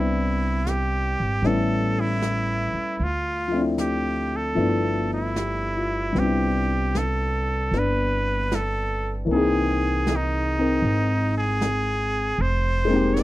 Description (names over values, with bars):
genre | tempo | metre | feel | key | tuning
jazz ballad | 77 BPM | 4/4 | swing 67% on 8ths | C major | A4 = 440 Hz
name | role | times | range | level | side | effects
trumpet with straight mute | melody | 0.0-13.2 s | D#4 to D5 | -26 LUFS | right 1 dB | slapback echo
warm grand piano | accompaniment | 0.0-13.2 s | E3 to Bb4 | -25 LUFS | left 2 dB | none
upright bass | bass | 0.0-13.2 s | F1 to D2 | -26 LUFS | right 1 dB | none
jazz brush drum kit | drums | 0.7-13.2 s | brushed snare drum, hi-hat, snare drum | -33 LUFS | equal | none
room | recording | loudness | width
little or no reverb | dry, close 1970s-style studio recording | -21 LUFS | side -16 dB against mid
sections
0.0-6.2 A section; 6.2-13.2 B section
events
none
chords
0.0 Cmaj9; 1.4 A7; 3.0 Dm7; 4.6 G13; 6.2 Cmaj9; 9.3 C7alt; 12.4 Fm11